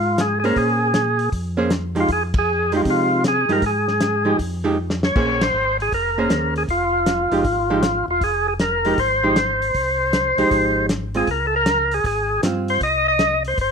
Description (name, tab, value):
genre	soul jazz organ trio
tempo	157 BPM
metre	4/4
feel	swing 66% on 8ths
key	F minor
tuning	A4 = 440 Hz
part	percussive tonewheel organ	melody	0.0-13.7 s	F4 to D#5	-19 LUFS	equal	overdrive, slow rotary speaker
part	mellow tonewheel organ	bass	0.0-13.7 s	E1 to C3	-26 LUFS	equal	slow rotary speaker
part	warm soul drum kit	drums	0.2-13.7 s	crash cymbal, hi-hat, kick drum, ride cymbal, snare drum	-24 LUFS	left 1 dB	none
part	archtop guitar, miked and amplified	accompaniment	0.4-12.8 s	F3 to C5	-22 LUFS	right 3 dB	none
room	moderate club reverb, RT60 0.8 s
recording	none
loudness	-17 LUFS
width	side -6 dB against mid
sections	0.0-13.7 A section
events	band accent 2.3, 5.3; drum fill 4.8-5.2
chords	0.0 Fm; 0.6 Bbm9; 2.1 Fm9; 5.2 Bbm9; 6.7 Fm9; 11.3 Dbmaj7; 12.8 Cm